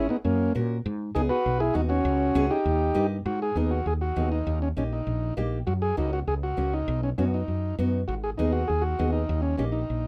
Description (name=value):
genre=latin, cumbia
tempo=199 BPM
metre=4/4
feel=straight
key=G# minor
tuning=A4 = 442 Hz
part: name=combo organ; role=melody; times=0.0-10.1 s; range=A#3 to B4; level=-29 LUFS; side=equal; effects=none
part: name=nylon-string guitar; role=accompaniment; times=0.0-9.8 s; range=A#3 to A#4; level=-32 LUFS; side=equal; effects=none
part: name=woody fretless electric bass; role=bass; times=0.0-10.1 s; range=G#1 to A#2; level=-30 LUFS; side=equal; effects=none
room=light reverb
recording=none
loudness=-26 LUFS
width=mono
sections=0.0-3.3 A section; 3.3-10.1 B section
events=none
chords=0.2 F#; 0.8 G#m; 1.5 B; 2.1 C#m; 2.7 D#; 3.3 G#m7; 4.5 D#; 5.7 F#; 6.9 B; 8.1 G#m7; 9.3 D#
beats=0.25 0.55 | 0.85 1.15 1.45 1.75 | 2.05 2.35 2.65 2.96 | 3.26 3.56 3.86 4.16 | 4.46 4.76 5.07 5.37 | 5.67 5.97 6.27 6.58 | 6.88 7.18 7.48 7.78 | 8.08 8.38 8.69 8.99 | 9.29 9.59 9.89